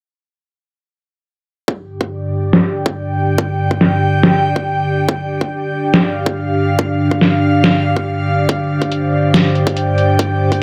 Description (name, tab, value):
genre	heavy wobble dubstep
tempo	141 BPM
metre	4/4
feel	swing 54% on 16ths, half-time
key	unclear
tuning	A4 = 440 Hz
part	evolving wavetable pad	sustained chords	1.9-10.6 s	G2 to C5	-19 LUFS	equal	chorus, built-in reverb, sidechain pumping
part	electronic kick drum	drums	1.7-10.6 s	none	-22 LUFS	equal	overdrive, high-pass filter on kick, high-pass filter on room
part	airy breathy pad	texture	1.7-10.6 s	G4 to G5	-22 LUFS	equal	chorus, sidechain pumping
part	dubstep drum kit	drums	2.5-10.6 s	hi-hat, snare drum	-15 LUFS	equal	overdrive, low-pass filter on snare, low-pass filter on hats, low-pass filter on room
room	moderate digital room reverb, RT60 1.2 s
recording	none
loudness	-15 LUFS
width	mono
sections	1.7-10.6 A section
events	filter sweep on drum 1.7-10.6; filter sweep on ambient pad 1.7-10.6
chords	1.7 G5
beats	| 1.68 2.11 2.53 2.96 | 3.38 3.81 4.23 4.66 | 5.08 5.51 5.94 6.36 | 6.79 7.21 7.64 8.06 | 8.49 8.91 9.34 9.77 | 10.19 10.62